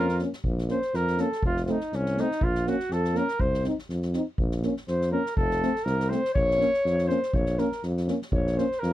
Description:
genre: balkan folk, Balkan brass band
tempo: 122 BPM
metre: 2/4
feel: swing 55% on 16ths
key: Bb harmonic minor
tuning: A4 = 440 Hz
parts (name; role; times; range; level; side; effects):
- mellow flugelhorn; melody; 0.0-8.9 s; Db4 to Db5; -27 LUFS; equal; none
- mellow French horn; accompaniment; 0.0-8.7 s; C4 to Eb4; -30 LUFS; left 7 dB; none
- mellow euphonium; accompaniment; 0.0-8.7 s; A3 to C4; -31 LUFS; right 7 dB; none
- warm tuba; bass; 0.0-8.9 s; F1 to F2; -28 LUFS; equal; none
- soft-mallet drum kit; percussion; 0.1-8.9 s; kick drum, snare drum; -31 LUFS; equal; none
room: little or no reverb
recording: dry, close 1970s-style studio recording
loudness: -24 LUFS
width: side -14 dB against mid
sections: 0.5-8.9 A section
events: flugelhorn solo 0.5-8.9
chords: 0.5 Bbm; 1.4 F; 2.4 Bbm; 3.4 Cmadd11; 4.4 Bbm; 5.4 F; 6.4 Bbm

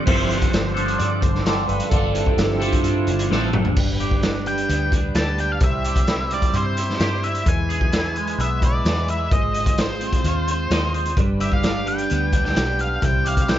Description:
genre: psychedelic rock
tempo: 130 BPM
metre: 4/4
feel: straight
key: G mixolydian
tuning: A4 = 440 Hz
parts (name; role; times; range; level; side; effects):
- bright tonewheel organ; sustained chords; 0.0-13.6 s; F3 to D5; -29 LUFS; right 4 dB; slow rotary speaker, overdrive
- twangy electric guitar; riff; 0.0-13.6 s; G2 to Eb5; -25 LUFS; right 1 dB; phaser, double-tracked left and right
- vintage muted fingered electric bass; bass; 0.1-13.6 s; G1 to G2; -25 LUFS; equal; none
- raw garage drum kit; drums; 0.1-13.6 s; crash cymbal, hi-hat, kick drum, snare drum, toms; -22 LUFS; equal; none
- octave-fuzz lead guitar; melody; 4.5-13.6 s; C5 to A5; -25 LUFS; left 1 dB; distortion, tape echo
room: little or no reverb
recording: nothing above 7.6 kHz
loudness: -18 LUFS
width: side -12 dB against mid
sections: 0.0-3.8 A section; 3.8-13.6 B section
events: tonewheel organ solo 0.0-3.8; drum fill 3.3-3.8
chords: 0.0 Dm7/G; 3.8 G; 5.6 C; 7.5 E; 9.3 Ab6; 11.2 G; 13.0 C

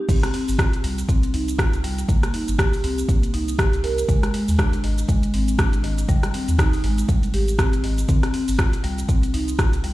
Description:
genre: afro house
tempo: 120 BPM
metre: 4/4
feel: swing 57% on 16ths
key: C minor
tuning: A4 = 441 Hz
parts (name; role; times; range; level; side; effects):
- marimba with medium mallets; arpeggios; 0.1-9.9 s; Eb3 to Bb4; -25 LUFS; equal; sidechain pumping, tape echo
- warm sub bass; bass; 0.1-9.9 s; G1 to Eb2; -24 LUFS; equal; sidechain pumping
- afro-pop drum kit; drums; 0.1-9.9 s; crash cymbal, hi-hat, rim click, shaker, toms; -28 LUFS; equal; none
- electronic kick drum; drums; 0.1-9.7 s; none; -20 LUFS; equal; none
room: little or no reverb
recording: played on a big sound system in a bare room, stone room reverb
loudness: -18 LUFS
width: side -16 dB against mid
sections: 0.1-9.9 A section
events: drop 0.1-9.9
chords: 0.1 C5; 4.1 Ab5; 8.1 C5

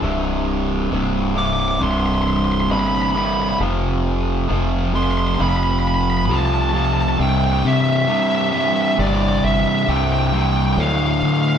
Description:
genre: post-rock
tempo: 67 BPM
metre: 4/4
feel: straight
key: C major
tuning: A4 = 441 Hz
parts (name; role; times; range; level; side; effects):
- sludgy distorted guitar; riff; 0.0-11.6 s; C2 to F3; -19 LUFS; equal; overdrive
- deep dub fingered electric bass; bass; 0.0-11.6 s; C1 to D3; -21 LUFS; equal; none
- dark smooth lead guitar; melody; 1.4-11.6 s; D5 to D6; -21 LUFS; right 1 dB; overdrive
room: moderate studio reverb, RT60 0.8 s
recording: band playing live in one room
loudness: -16 LUFS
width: side -8 dB against mid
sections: 0.0-7.2 A section; 7.2-11.6 B section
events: build-up 0.0-7.2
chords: 0.0 C5; 3.6 F; 7.2 C; 10.8 Dm

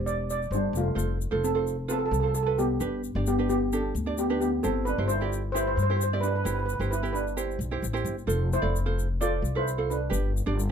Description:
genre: calypso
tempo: 131 BPM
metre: 4/4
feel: swing 53% on 16ths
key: C major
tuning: A4 = 440 Hz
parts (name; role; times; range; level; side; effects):
- steel pan; melody; 0.0-10.5 s; G3 to D5; -28 LUFS; equal; none
- ukulele; accompaniment; 0.0-10.7 s; D4 to D5; -32 LUFS; right 5 dB; none
- upright bass; bass; 0.0-10.7 s; E1 to G2; -29 LUFS; left 1 dB; none
- egg shaker; percussion; 0.1-10.7 s; none; -40 LUFS; left 10 dB; none
room: moderate small room reverb, RT60 0.6 s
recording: dark, warm production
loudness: -25 LUFS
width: side -7 dB against mid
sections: 1.0-10.7 A section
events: none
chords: 0.0 Gsus4; 1.0 F; 2.8 G; 4.6 C/G; 8.3 F; 10.1 G

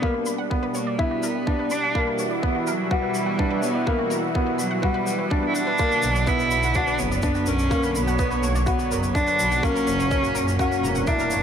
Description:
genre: piano and strings electronica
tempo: 125 BPM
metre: 4/4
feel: straight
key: B harmonic minor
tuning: A4 = 439 Hz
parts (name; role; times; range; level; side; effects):
- rich cello; melody; 0.0-11.4 s; F#3 to E4; -24 LUFS; right 1 dB; digital delay
- lush unison pad; sustained chords; 0.0-11.4 s; A#2 to C#5; -28 LUFS; equal; chorus, sidechain pumping
- analog pluck; arpeggios; 0.0-11.4 s; B3 to B5; -34 LUFS; right 2 dB; chorus, sidechain pumping, digital delay
- dark upright piano; riff; 0.0-11.3 s; A#3 to F#4; -27 LUFS; left 2 dB; digital delay
- electronic kick drum; drums; 0.0-11.2 s; none; -26 LUFS; equal; none
- shaker; drums; 0.3-11.4 s; none; -36 LUFS; left 3 dB; none
- warm symphonic double bass section; bass; 6.0-11.4 s; E1 to B1; -26 LUFS; equal; sidechain pumping
room: light reverb, small room reverb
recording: none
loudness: -20 LUFS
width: side -8 dB against mid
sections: 0.0-5.8 A section; 5.8-11.4 B section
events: build-up 0.0-5.8; filter sweep on analog synth pad 0.0-5.8; filter sweep on cello 0.0-5.8; drop 5.8-11.4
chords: 0.0 Emadd9; 5.8 Bm; 9.6 F#

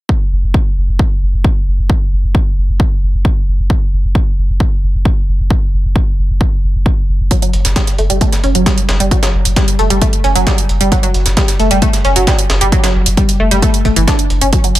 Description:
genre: driving peak-time techno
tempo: 133 BPM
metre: 4/4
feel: straight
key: F# phrygian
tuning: A4 = 440 Hz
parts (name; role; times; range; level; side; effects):
- electronic kick drum; drums; 0.1-14.6 s; none; -13 LUFS; equal; none
- saturated sub bass; bass; 0.3-14.8 s; F#1; -14 LUFS; equal; overdrive, sidechain pumping, low-pass filter
- analog pluck; riff; 7.3-14.7 s; E3 to D4; -16 LUFS; equal; chorus, phaser, sidechain pumping, tape echo
- breakbeat sampler-style drum kit; drums; 7.3-14.8 s; hi-hat, snare drum; -22 LUFS; equal; high-pass filter on hats, high-pass filter on snare
- electronic hi-hat; drums; 7.3-14.8 s; none; -18 LUFS; right 3 dB; sidechain pumping on hats
room: little or no reverb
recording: none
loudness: -11 LUFS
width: side -15 dB against mid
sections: 0.1-14.5 A section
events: none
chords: 0.1 F#5

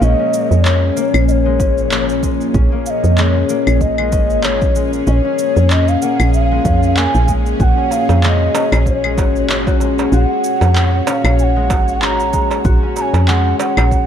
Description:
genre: organic downtempo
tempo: 95 BPM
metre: 4/4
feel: swing 56% on 16ths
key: Bb minor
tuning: A4 = 439 Hz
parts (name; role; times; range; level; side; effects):
- breathy mellow ney; melody; 0.0-14.1 s; Db5 to C6; -19 LUFS; equal; ping-pong delay
- bowed-like drone; sustained chords; 0.0-14.1 s; Bb2 to Db5; -21 LUFS; left 1 dB; built-in reverb, sidechain pumping
- concert harp; arpeggios; 0.0-14.1 s; Ab3 to Gb4; -21 LUFS; left 4 dB; ping-pong delay
- woody FM bass; bass; 0.0-14.1 s; Ab1 to F2; -15 LUFS; equal; sidechain pumping
- electronic shaker, handclaps and claves; drums; 0.0-14.1 s; none; -22 LUFS; equal; none
- electronic kick drum; drums; 1.6-14.1 s; none; -17 LUFS; right 1 dB; none
- darbuka; percussion; 7.9-13.9 s; none; -25 LUFS; right 6 dB; none
room: light reverb, digital ambience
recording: dark, warm production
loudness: -12 LUFS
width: side -9 dB against mid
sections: 0.0-14.1 A section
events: none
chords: 0.0 Bbm7; 7.6 Gbsus2

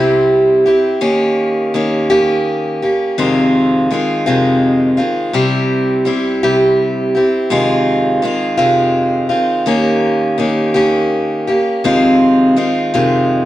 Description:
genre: rock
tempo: 55 BPM (dotted quarters)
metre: 6/8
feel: straight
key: F minor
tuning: A4 = 438 Hz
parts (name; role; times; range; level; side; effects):
- picked steel-string acoustic guitar; solo; 0.0-13.5 s; F2 to G4; -12 LUFS; equal; none
room: moderate large studio reverb, RT60 0.9 s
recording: dark, warm production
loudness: -12 LUFS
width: side -14 dB against mid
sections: 0.0-1.0 A section; 1.0-13.5 B section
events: none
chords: 0.0 C; 1.0 Eb7; 3.2 Fm7; 5.4 C; 7.5 Fm7; 9.7 Eb7; 11.8 Fm7

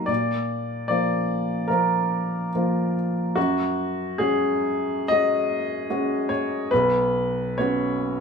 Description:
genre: neoclassical minimalist piano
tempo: 65-75 BPM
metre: 4/4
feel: rubato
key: unclear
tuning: A4 = 440 Hz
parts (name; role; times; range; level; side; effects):
- clear upright piano; solo; 0.0-8.2 s; B1 to F5; -21 LUFS; equal; none
room: light reverb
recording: band playing live in one room, small room ambience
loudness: -21 LUFS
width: side -6 dB against mid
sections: 0.0-8.2 A section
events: none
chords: 0.1 Bb; 3.4 Gbsus2; 6.7 Bsus2

